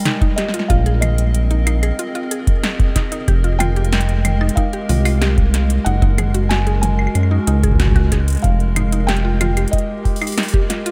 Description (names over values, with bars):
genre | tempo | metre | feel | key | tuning
IDM | 93 BPM | 4/4 | straight | F minor | A4 = 440 Hz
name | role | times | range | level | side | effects
felt-muted upright piano | melody | 0.0-10.9 s | Eb5 to Ab5 | -30 LUFS | equal | delay
warbly tape-like pad | sustained chords | 0.0-10.9 s | G3 to Eb5 | -27 LUFS | equal | chorus, built-in reverb, vintage 12-bit sampler grit
electro analog drum machine | drums | 0.0-10.9 s | claves, hi-hat, snare drum, toms | -26 LUFS | equal | none
mallet-like synth pluck | arpeggios | 0.1-10.9 s | Eb4 to Ab4 | -30 LUFS | equal | chorus, phaser, cassette tape, tape echo
electronic kick drum | drums | 0.2-10.7 s | none | -18 LUFS | equal | none
round analog bass | bass | 0.7-9.7 s | F1 to Gb2 | -18 LUFS | equal | none
room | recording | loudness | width
light reverb, digital ambience | none | -17 LUFS | mono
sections
0.0-10.9 A section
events
none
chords
0.0 Fm11; 0.7 Bb9sus4; 3.3 Fm11; 5.9 Gb69; 8.4 Fm11